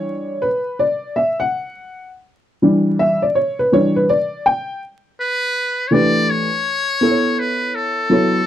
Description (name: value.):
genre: hip hop.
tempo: 82 BPM.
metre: 4/4.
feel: swing 64% on 16ths.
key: E dorian.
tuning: A4 = 440 Hz.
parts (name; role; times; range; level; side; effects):
dark upright piano; accompaniment; 0.0-8.4 s; E3 to G5; -16 LUFS; equal; none.
trumpet with metal mute; melody; 5.2-8.5 s; A4 to D5; -18 LUFS; left 2 dB; none.
room: light reverb.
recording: dry, close 1970s-style studio recording, vinyl crackle.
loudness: -15 LUFS.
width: side -11 dB against mid.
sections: 0.0-5.2 A section; 5.2-8.5 B section.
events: upright piano solo 0.0-5.2.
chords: 0.0 Em7; 6.6 B9sus4.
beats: 0.06 0.80 1.53 | 2.26 2.99 3.72 4.45 | 5.18 5.92 6.65 7.38 | 8.11.